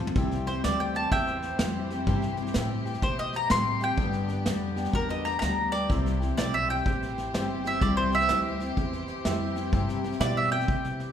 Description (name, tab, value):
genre	honky-tonk and classic country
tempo	125 BPM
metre	4/4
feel	swing 64% on 8ths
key	C major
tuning	A4 = 440 Hz
part	picked steel-string acoustic guitar	accompaniment	0.0-11.1 s	G2 to A4	-31 LUFS	left 2 dB	none
part	tack piano	accompaniment	0.0-0.1, 8.3-10.6 s	E4 to E5	-37 LUFS	right 5 dB	none
part	upright bass	bass	0.0-11.1 s	G1 to C3	-32 LUFS	equal	none
part	vintage brush drum kit	drums	0.1-11.0 s	hi-hat, kick drum, snare drum, toms	-31 LUFS	equal	none
part	warm studio string section	sustained chords	0.2-11.1 s	D3 to C5	-38 LUFS	left 1 dB	none
part	mandolin	melody	0.5-11.1 s	Bb4 to C6	-28 LUFS	equal	none
room	wet recital hall reverb, RT60 1.4 s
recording	recorded in a church or concert hall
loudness	-25 LUFS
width	side -9 dB against mid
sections	0.2-11.1 A section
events	drum fill 0.0; mandolin solo 0.2-11.1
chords	0.2 C; 4.0 G; 5.9 C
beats	| 0.16 0.64 1.11 1.59 | 2.07 2.55 3.03 3.51 | 3.99 4.47 4.95 5.42 | 5.90 6.38 6.86 7.34 | 7.82 8.30 8.78 9.26 | 9.73 10.21 10.69